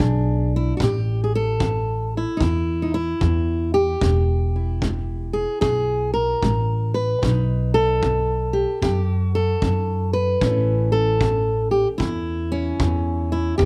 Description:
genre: acoustic country blues, solo or duo.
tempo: 75 BPM.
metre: 4/4.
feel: swing 66% on 8ths.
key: unclear.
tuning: A4 = 442 Hz.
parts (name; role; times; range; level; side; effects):
fingerpicked steel-string acoustic guitar; melody; 0.0-13.7 s; E2 to B4; -24 LUFS; equal; none.
upright bass; bass; 0.0-13.7 s; E1 to F#2; -24 LUFS; equal; none.
kick drum; drums; 0.0-13.7 s; none; -28 LUFS; equal; none.
room: little or no reverb.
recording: none.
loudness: -21 LUFS.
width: mono.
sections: 0.0-13.7 A section.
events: none.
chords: 0.0 E; 0.8 A5; 4.0 E; 7.2 B; 10.4 A.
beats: 0.00 | 0.81 1.61 2.41 3.21 | 4.02 4.82 5.62 6.42 | 7.22 8.02 8.82 9.62 | 10.42 11.21 12.01 12.81 | 13.61.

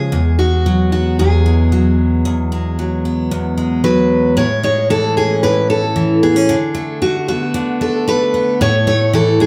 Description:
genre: pop.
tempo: 113 BPM.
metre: 4/4.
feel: straight.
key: A major.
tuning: A4 = 439 Hz.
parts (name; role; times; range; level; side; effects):
picked steel-string acoustic guitar; melody; 0.0-9.5 s; F#4 to C#5; -19 LUFS; equal; slapback echo.
picked steel-string acoustic guitar; accompaniment; 0.0-9.5 s; E2 to C#4; -17 LUFS; equal; none.
room: wet studio ambience, RT60 0.4 s.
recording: heard from further back in the room.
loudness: -15 LUFS.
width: mono.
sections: 0.0-4.4 A section; 4.4-9.5 B section.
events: none.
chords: 0.1 Eadd9; 4.4 Amaj7; 6.5 D6; 8.6 A.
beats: | 0.11 0.65 1.18 1.71 | 2.25 2.78 3.31 3.84 | 4.37 4.90 5.43 5.96 | 6.49 7.02 7.55 8.08 | 8.60 9.13.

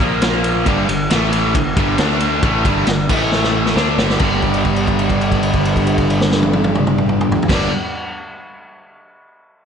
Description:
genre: classic rock.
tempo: 135 BPM.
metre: 4/4.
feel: straight.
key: G minor.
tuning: A4 = 440 Hz.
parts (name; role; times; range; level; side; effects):
string machine, violins; sustained chords; 0.0-7.7 s; A3 to F5; -28 LUFS; equal; none.
crunchy overdriven guitar; riff; 0.0-7.7 s; G2 to D4; -21 LUFS; right 10 dB; none.
overdriven electric guitar; riff; 0.0-7.7 s; G2 to D4; -22 LUFS; left 10 dB; none.
fuzz fingered electric bass; bass; 0.0-7.7 s; G1 to D2; -22 LUFS; equal; overdrive.
vintage drum kit; drums; 0.0-7.6 s; crash cymbal, kick drum, ride cymbal, snare drum, toms; -18 LUFS; equal; none.
sludgy distorted guitar; riff; 0.7-7.7 s; G2 to D4; -22 LUFS; equal; overdrive, slapback echo.
room: moderate lush hall reverb, RT60 1.8 s, studio reverb.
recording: big arena sound, nothing above 10.7 kHz.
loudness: -14 LUFS.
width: side -7 dB against mid.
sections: 0.0-4.2 A section; 4.2-7.8 B section.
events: drum fill 3.3-4.2; held note 4.2-7.5.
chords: 0.0 Bb5; 0.7 Gm; 1.1 A5; 1.6 Gm; 2.0 D5; 2.4 Gm; 3.1 A5; 3.8 Gm; 4.2 G.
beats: 0.22 | 0.67 1.11 1.55 2.00 | 2.44 2.88 3.33 3.77 | 4.21 4.66 5.10 5.54 | 5.99 6.43 6.87 7.32.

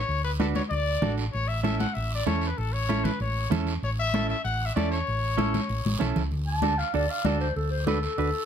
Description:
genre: latin, cumbia.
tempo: 193 BPM.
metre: 4/4.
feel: straight.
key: D major.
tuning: A4 = 439 Hz.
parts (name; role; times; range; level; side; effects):
bright trumpet; second line; 0.0-6.1 s; A4 to F#5; -30 LUFS; left 4 dB; none.
hollow-body short-scale fingered electric bass; bass; 0.0-8.3 s; A1 to E2; -29 LUFS; equal; none.
guiro; percussion; 0.1-8.5 s; none; -39 LUFS; right 5 dB; none.
semi-hollow electric guitar; accompaniment; 0.4-8.3 s; C#4 to B4; -30 LUFS; right 8 dB; none.
congas; percussion; 0.4-8.3 s; none; -29 LUFS; left 2 dB; none.
dark clarinet; melody; 6.5-8.5 s; A4 to A5; -28 LUFS; equal; plate reverb.
room: moderate studio reverb, RT60 0.7 s.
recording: none.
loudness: -24 LUFS.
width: side -8 dB against mid.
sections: 0.0-6.3 A section; 6.3-8.5 B section.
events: trumpet solo 0.0-6.3; drum fill 5.8-6.3; clarinet solo 6.3-8.5.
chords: 0.0 D; 1.3 A; 6.3 D.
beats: | 0.09 0.40 0.71 1.02 | 1.33 1.65 1.96 2.27 | 2.58 2.89 3.20 3.51 | 3.82 4.14 4.45 4.76 | 5.07 5.38 5.69 6.00 | 6.31 6.63 6.94 7.25 | 7.56 7.87 8.18.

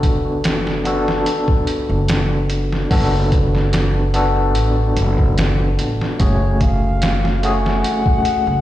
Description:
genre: trip hop.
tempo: 73 BPM.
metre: 4/4.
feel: straight.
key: unclear.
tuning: A4 = 440 Hz.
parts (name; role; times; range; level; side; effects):
overdriven tine electric piano; accompaniment; 0.0-8.6 s; A3 to A4; -20 LUFS; left 1 dB; fast tremolo, low-pass filter, tape echo.
upright bass; bass; 0.0-8.6 s; F#1 to A1; -19 LUFS; equal; tube saturation.
trip hop sampler-style drum kit; drums; 0.0-8.5 s; hi-hat, kick drum, snare drum; -20 LUFS; equal; overdrive.
bright reedy baroque flute; melody; 6.2-8.6 s; C#5 to F#5; -22 LUFS; left 5 dB; vintage 12-bit sampler grit, tape echo.
room: little or no reverb.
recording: played on a big sound system in a bare room, stone room reverb.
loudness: -15 LUFS.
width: side -13 dB against mid.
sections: 0.0-8.6 A section.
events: none.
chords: 0.0 Bm7/F#; 6.2 F#madd9.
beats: 0.44 1.27 2.09 | 2.91 3.73 4.55 5.38 | 6.20 7.02 7.84.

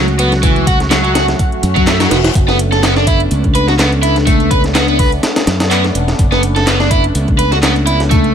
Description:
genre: breakbeat, breaks.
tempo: 125 BPM.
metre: 4/4.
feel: swing 55% on 16ths.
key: unclear.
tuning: A4 = 440 Hz.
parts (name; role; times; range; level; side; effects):
phased analog pad; sustained chords; 0.0-8.3 s; F#3 to F#4; -19 LUFS; equal; phaser, chorus, sidechain pumping.
overdriven electric guitar; riff; 0.0-8.3 s; E3 to B4; -15 LUFS; right 1 dB; tape echo.
fingered electric bass; bass; 0.0-8.3 s; E1 to F#2; -16 LUFS; equal; none.
house drum kit; drums; 0.1-8.3 s; handclaps, hi-hat; -22 LUFS; right 1 dB; studio reverb.
breakbeat sampler-style drum kit; drums; 0.2-8.2 s; hi-hat, kick drum, snare drum; -15 LUFS; equal; studio reverb.
reverse cymbal; sound effects; 1.6-2.4 s; none; -26 LUFS; left 7 dB; none.
room: little or no reverb.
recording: none.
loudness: -10 LUFS.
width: side -8 dB against mid.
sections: 0.0-8.3 A section.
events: reverse cymbal 1.6-2.4.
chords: 0.0 F#m7; 2.4 Bm9.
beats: | 0.43 0.91 1.39 1.87 | 2.35 2.83 3.31 3.79 | 4.27 4.75 5.23 5.71 | 6.19 6.67 7.15 7.63 | 8.11.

